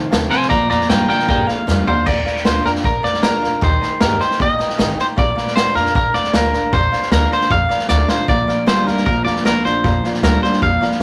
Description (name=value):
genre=rockabilly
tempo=154 BPM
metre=4/4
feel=straight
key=Bb mixolydian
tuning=A4 = 440 Hz
part: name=picked steel-string acoustic guitar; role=accompaniment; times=0.0-11.0 s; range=F2 to G4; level=-28 LUFS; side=equal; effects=none
part: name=tack piano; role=accompaniment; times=0.0-10.9 s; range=C5 to Bb5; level=-29 LUFS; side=equal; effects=none
part: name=electric guitar through a small old amp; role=riff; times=0.0-2.0, 8.3-11.0 s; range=F2 to Ab3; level=-23 LUFS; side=equal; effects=none
part: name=upright bass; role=bass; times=0.1-11.0 s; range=Ab1 to Bb2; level=-24 LUFS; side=equal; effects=none
part: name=vintage drum kit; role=drums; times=0.1-11.0 s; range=crash cymbal, hi-hat, kick drum, snare drum, toms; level=-22 LUFS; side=equal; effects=none
part: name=twangy electric guitar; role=melody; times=0.3-11.0 s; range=Bb4 to Bb5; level=-20 LUFS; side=equal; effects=none
room=moderate studio reverb, RT60 0.6 s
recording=rough rehearsal-room recording, tube saturation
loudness=-16 LUFS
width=mono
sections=0.0-2.1 A section; 2.1-11.0 B section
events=clean electric guitar solo 0.0-2.1; drum fill 1.7-2.1, 7.9-8.3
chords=0.0 F7; 0.5 Bb; 3.6 Eb; 5.2 Bb